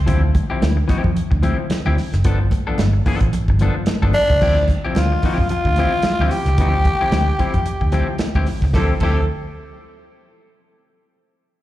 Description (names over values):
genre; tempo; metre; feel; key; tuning
funk; 111 BPM; 4/4; swing 56% on 16ths; D dorian; A4 = 440 Hz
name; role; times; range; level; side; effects
vintage muted fingered electric bass; bass; 0.0-9.3 s; F#1 to F2; -18 LUFS; equal; none
semi-hollow electric guitar; accompaniment; 0.1-9.2 s; F3 to A4; -24 LUFS; left 5 dB; harmonic tremolo, slapback echo
warm soul drum kit; drums; 0.1-9.2 s; crash cymbal, hi-hat, kick drum, snare drum; -21 LUFS; equal; none
congas; percussion; 0.1-9.3 s; none; -30 LUFS; right 4 dB; none
growling tenor saxophone; melody; 4.1-9.3 s; D4 to A4; -20 LUFS; equal; slapback echo
clear horn section; second line; 8.7-9.2 s; A3 to C5; -35 LUFS; right 2 dB; slapback echo
room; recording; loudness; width
studio reverb; live gig heard through the venue's PA, club reverb; -15 LUFS; side -15 dB against mid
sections
0.0-4.4 A section; 4.4-8.7 B section; 8.7-10.9 C section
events
none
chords
0.0 Dm11; 2.2 G9; 4.4 Dm11